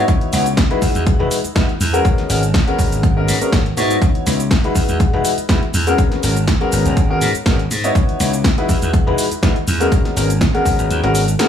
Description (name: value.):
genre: filtered disco house.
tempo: 122 BPM.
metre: 4/4.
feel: swing 54% on 16ths.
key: G# minor.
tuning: A4 = 440 Hz.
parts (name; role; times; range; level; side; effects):
clear grand piano; accompaniment; 0.0-11.5 s; G#3 to C#5; -19 LUFS; left 2 dB; phaser, sidechain pumping.
glassy slap bass; bass; 0.0-11.3 s; E1 to G#2; -19 LUFS; equal; tube saturation, sidechain pumping.
electronic kick drum; drums; 0.1-10.8 s; none; -16 LUFS; equal; overdrive.
punchy analog drum machine; drums; 0.1-11.5 s; cabasa, hi-hat, snare drum; -22 LUFS; right 1 dB; overdrive, sidechain pumping on hats, sidechain pumping on cymbals, sidechain pumping on perc.
room: digital ambience.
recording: studio ambience.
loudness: -14 LUFS.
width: side -9 dB against mid.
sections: 0.0-11.5 A section.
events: kick drops out 10.9-11.5.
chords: 0.1 C#m11; 0.8 Emaj9; 2.1 G#m11; 4.0 C#m11; 4.8 Emaj9; 6.0 G#m11; 8.0 C#m11; 8.7 Emaj9; 9.9 G#m11.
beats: | 0.08 0.57 1.07 1.56 | 2.05 2.54 3.03 3.53 | 4.02 4.51 5.00 5.49 | 5.99 6.48 6.97 7.46 | 7.95 8.44 8.94 9.43 | 9.92 10.41 10.90 11.39.